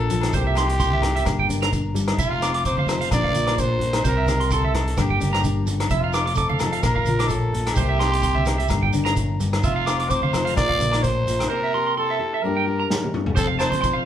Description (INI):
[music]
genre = highlife guitar band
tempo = 129 BPM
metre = 4/4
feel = swing 54% on 16ths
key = F major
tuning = A4 = 440 Hz
[part]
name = growling trumpet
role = melody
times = 0.0-14.0 s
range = F4 to D5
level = -25 LUFS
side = right 1 dB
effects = none
[part]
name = nylon-string guitar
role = accompaniment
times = 0.0-14.1 s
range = F2 to A4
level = -28 LUFS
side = left 4 dB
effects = none
[part]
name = fingered electric bass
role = bass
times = 0.0-14.1 s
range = F1 to C2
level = -25 LUFS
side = equal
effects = none
[part]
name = vintage drum kit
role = drums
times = 0.1-14.0 s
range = hi-hat, kick drum, rim click, snare drum, toms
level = -27 LUFS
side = equal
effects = none
[part]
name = congas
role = percussion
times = 0.1-13.8 s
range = none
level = -30 LUFS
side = right 2 dB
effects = none
[part]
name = shekere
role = percussion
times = 0.1-13.9 s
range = none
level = -32 LUFS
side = right 2 dB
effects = none
[part]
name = agogo bells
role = percussion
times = 0.2-13.7 s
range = none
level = -32 LUFS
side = left 6 dB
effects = none
[part]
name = electric guitar at the edge of break-up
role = arpeggios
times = 0.3-14.0 s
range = C5 to D6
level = -26 LUFS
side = right 4 dB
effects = none
[sound]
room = wet large studio reverb, RT60 0.9 s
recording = band playing live in one room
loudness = -19 LUFS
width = side -10 dB against mid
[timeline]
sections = 0.0-13.4 A section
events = drum fill 12.9-13.4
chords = 0.3 C7; 1.2 Gmadd9; 2.2 F; 3.1 Bb; 4.0 C7; 5.0 Gmadd9; 5.9 F; 6.8 Bb5; 7.8 C7; 8.7 Gmadd9; 9.6 F; 10.6 Bb; 11.5 C7; 12.4 Gmadd9; 13.4 F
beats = | 0.32 0.79 1.25 1.72 | 2.18 2.64 3.11 3.57 | 4.04 4.50 4.97 5.44 | 5.90 6.37 6.83 7.30 | 7.77 8.23 8.70 9.17 | 9.63 10.10 10.57 11.03 | 11.50 11.97 12.43 12.90 | 13.37 13.83